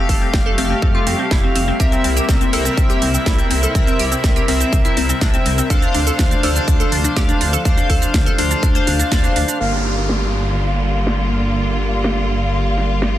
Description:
progressive house; 123 BPM; 4/4; straight; A4 = 439 Hz
bright studio string section; sustained chords; 0.0-13.2 s; C3 to G4; -25 LUFS; right 1 dB; sidechain pumping, low-pass filter
glassy wavetable pluck; arpeggios; 0.0-9.5 s; C4 to D5; -23 LUFS; equal; chorus, phaser, vintage 12-bit sampler grit, sidechain pumping, digital delay
chorused polysynth; stabs; 0.0-13.2 s; A3 to F5; -21 LUFS; left 2 dB; sidechain pumping, digital delay
dark detuned saw bass; bass; 0.1-13.2 s; F1 to F2; -21 LUFS; equal; tube saturation, sidechain pumping
electronic kick drum; drums; 0.1-9.2 s; -17 LUFS; equal
house drum kit; drums; 0.1-13.1 s; hi-hat, shaker, snare drum; -24 LUFS; right 2 dB; sidechain pumping on hats, low-pass filter on hats, low-pass filter on snare, sidechain pumping on perc, low-pass filter on perc, low-pass filter on room
downlifter; sound effects; 9.6-13.2 s; -28 LUFS; right 1 dB
little or no reverb; dense, heavily limited modern master; -14 LUFS; side -13 dB against mid
0.0-9.6 A section; 9.6-13.2 B section
filter sweep on string section 0.0-9.6; band accent 9.1; filter sweep on drum 9.6-13.2; filter sweep on analog polysynth 9.6-13.2
0.0 Fadd9; 1.8 C7; 5.7 Dm7; 9.6 Gm7

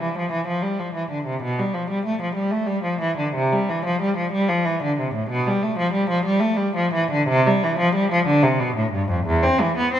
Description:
classical, baroque-style suite movement for unaccompanied cello; 61 BPM (dotted quarters); 6/8; uneven beats, rubato; C major; A4 = 441 Hz
rich cello; solo; 0.0-10.0 s; E2 to C4; -19 LUFS; equal
moderate concert hall reverb, RT60 1.7 s; -19 LUFS; side -10 dB against mid
0.0-10.0 A section

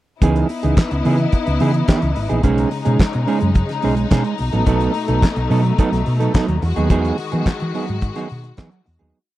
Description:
disco; 108 BPM; 4/4; straight; C# minor; A4 = 440 Hz
mellow electric guitar; accompaniment; 0.2-9.2 s; E3 to A4; -19 LUFS; right 4 dB; warbly pitch drift
rich studio string section; sustained chords; 0.2-9.1 s; B2 to F#4; -24 LUFS; left 4 dB
hollow-body short-scale fingered electric bass; bass; 0.2-9.1 s; G#1 to E3; -19 LUFS; equal
damped 70s drum kit; drums; 0.2-9.1 s; handclaps, hi-hat, kick drum, snare drum; -17 LUFS; equal
little or no reverb; dry, close 1970s-style studio recording; -15 LUFS; side -15 dB against mid
0.2-9.1 verse
fade-out 6.9-9.1
0.2 C#m9; 2.4 B69; 4.4 B7; 6.6 Emaj9

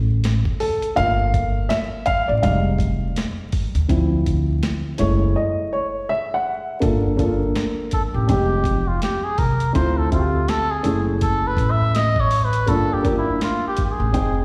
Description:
hip hop, jazz-hop; 82 BPM; 4/4; swing 60% on 16ths; G dorian; A4 = 440 Hz
dark upright piano; accompaniment; 0.0-14.4 s; F3 to G5; -25 LUFS; equal; slapback echo
upright bass; bass; 0.0-14.4 s; F1 to Eb2; -23 LUFS; equal
boom bap sampler-style drum kit; drums; 0.2-14.3 s; hi-hat, kick drum, snare drum; -26 LUFS; equal
trumpet with cup mute; melody; 7.9-14.4 s; E4 to E5; -25 LUFS; equal; slapback echo
light reverb, small room ambience; live gig heard through the venue's PA, recital hall reverb, vinyl crackle; -20 LUFS; mono
0.0-6.8 A section; 6.8-14.4 A section
upright piano solo 0.0-6.8; break 5.4-6.8; muted trumpet solo 6.8-14.4
0.0 F#m9 (rootless); 1.0 Gm9; 2.4 Fm9; 3.9 Dm9; 5.0 F#m9; 6.8 Gm9; 8.3 Fm9; 9.7 Dm9; 10.8 F#m9; 12.7 Gm9

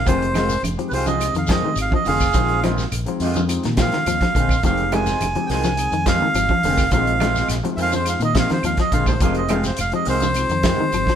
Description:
afrobeat; 105 BPM; 4/4; straight; F minor; A4 = 442 Hz
melodica; melody; 0.0-11.2 s; Ab4 to Ab5; -22 LUFS; right 2 dB
fingered electric bass; bass; 0.0-11.1 s; F1 to Bb2; -25 LUFS; equal
barky tine electric piano; accompaniment; 0.1-11.1 s; Ab3 to Ab4; -30 LUFS; left 3 dB
clean electric guitar; arpeggios; 0.1-11.2 s; D3 to Ab3; -26 LUFS; left 7 dB
electric guitar through a small old amp; stabs; 0.1-10.8 s; Eb3 to F4; -27 LUFS; right 2 dB; phaser
warm soul drum kit; drums; 0.1-11.2 s; hi-hat, kick drum, snare drum; -23 LUFS; equal
congas; percussion; 0.1-11.2 s; -28 LUFS; right 4 dB
shekere; percussion; 0.1-11.1 s; -33 LUFS; left 3 dB
claves; percussion; 0.3-11.1 s; -38 LUFS; right 9 dB
moderate stone room reverb, RT60 1.1 s; band playing live in one room; -17 LUFS; side -9 dB against mid
0.0-11.2 A section
melodica solo 0.0-11.2; drum fill 8.4-9.2
0.1 Fm7; 2.4 Bb9sus4; 4.6 Fm7; 6.9 Bb9sus4; 9.2 Fm7

